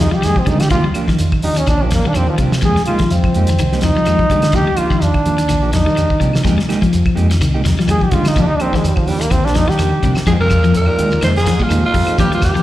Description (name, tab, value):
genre	afrobeat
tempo	126 BPM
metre	4/4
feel	swing 55% on 16ths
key	F dorian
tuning	A4 = 438 Hz
part	bright trombone	melody	0.0-10.2 s	F3 to Ab4	-18 LUFS	right 1 dB	slapback echo
part	electric guitar at the edge of break-up	arpeggios	0.0-12.6 s	Eb3 to G3	-21 LUFS	left 6 dB	none
part	mellow electric guitar	stabs	0.0-12.5 s	F3 to G4	-23 LUFS	right 5 dB	slapback echo
part	fingered electric bass	bass	0.0-12.6 s	Bb1 to F3	-16 LUFS	equal	none
part	cloth-damped thuddy drum kit	drums	0.0-12.6 s	hi-hat, kick drum, snare drum	-20 LUFS	equal	none
part	shekere	percussion	0.1-12.6 s	none	-23 LUFS	equal	slapback echo
part	claves	percussion	0.2-12.6 s	none	-32 LUFS	left 1 dB	none
part	growling alto saxophone	melody	10.3-12.6 s	F4 to C5	-17 LUFS	right 1 dB	slapback echo
part	bright trombone section	second line	10.3-12.6 s	F2 to C3	-24 LUFS	left 2 dB	slapback echo
room	little or no reverb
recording	live gig heard through the venue's PA, recital hall reverb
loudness	-12 LUFS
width	side -14 dB against mid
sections	0.0-10.3 A section; 10.3-12.6 B section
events	trombone solo 0.0-10.3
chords	0.0 Fm11; 0.7 Ebmaj9; 2.6 Fm11; 4.5 Ebmaj9; 6.5 Fm11; 8.4 Ebmaj9; 10.3 Fm11